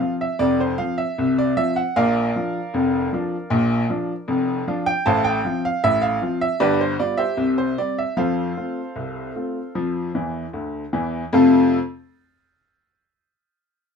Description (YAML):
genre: ragtime piano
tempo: 77 BPM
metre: 2/4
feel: straight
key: F major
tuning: A4 = 440 Hz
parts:
  - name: clear upright piano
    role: solo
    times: 0.0-11.8 s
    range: F1 to A5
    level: -19 LUFS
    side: equal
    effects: none
room: light reverb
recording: minimal, uncompressed stereo recording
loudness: -19 LUFS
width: side -6 dB against mid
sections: 0.0-11.3 A section; 11.3-12.9 B section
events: upright piano fill 10.2-11.3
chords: 0.0 F5; 2.0 Bb; 5.1 F/A; 6.6 G7; 7.4 C5; 8.2 F